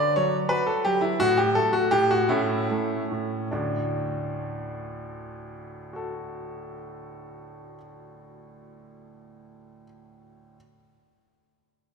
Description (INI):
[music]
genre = classical-period piano sonatina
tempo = 48-59 BPM (dotted quarters)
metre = 6/8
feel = straight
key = D major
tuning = A4 = 441 Hz
[part]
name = clear baby grand piano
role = solo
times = 0.0-10.6 s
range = D2 to D5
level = -24 LUFS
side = equal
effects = none
[sound]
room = wet church reverb, RT60 3.1 s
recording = recorded in a church or concert hall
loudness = -23 LUFS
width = side -5 dB against mid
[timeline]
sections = 0.0-3.5 A section; 3.5-8.4 B section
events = slowing down 0.0-3.5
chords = 0.2 N.C.; 2.3 A; 3.5 D